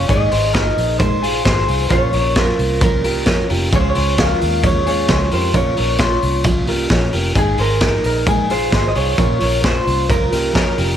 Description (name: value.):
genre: jangly indie pop.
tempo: 132 BPM.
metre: 4/4.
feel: straight.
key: unclear.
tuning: A4 = 440 Hz.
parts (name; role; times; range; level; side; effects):
electric guitar through a small old amp; melody; 0.0-10.9 s; Ab4 to F5; -20 LUFS; right 1 dB; spring reverb, slapback echo, plate reverb.
fingerpicked steel-string acoustic guitar; accompaniment; 0.0-11.0 s; Bb2 to C5; -24 LUFS; right 4 dB; plate reverb.
electric guitar through a small old amp; arpeggios; 0.0-11.0 s; Eb4 to C6; -23 LUFS; left 6 dB; slapback echo, plate reverb.
vintage muted fingered electric bass; bass; 0.0-11.0 s; F1 to F2; -21 LUFS; equal; none.
raw garage drum kit; drums; 0.1-10.9 s; hi-hat, kick drum, ride cymbal, snare drum; -18 LUFS; equal; none.
room: light reverb.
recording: none.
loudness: -14 LUFS.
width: side -10 dB against mid.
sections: 0.0-11.0 A section.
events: none.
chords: 0.1 Abadd9; 1.9 Bbm; 3.7 Db; 5.5 Bbm; 7.4 Abadd9; 9.2 Bbm.